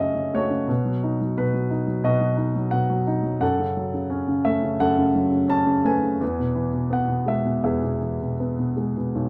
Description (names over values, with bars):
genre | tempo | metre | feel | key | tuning
classical, lyrical solo piano | 78-90 BPM | 4/4 | rubato | F# dorian | A4 = 442 Hz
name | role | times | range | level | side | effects
warm grand piano | solo | 0.0-9.3 s | B1 to A5 | -23 LUFS | equal | none
room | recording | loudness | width
light reverb | close, detailed microphones | -23 LUFS | mono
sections
0.0-9.3 A section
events
none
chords
0.0 F#m; 0.7 B; 3.4 F#m; 6.2 E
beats
| 0.69 1.38 2.05 2.73 | 3.42 4.11 4.80 5.50 | 6.22 6.93 7.64 8.39 | 9.15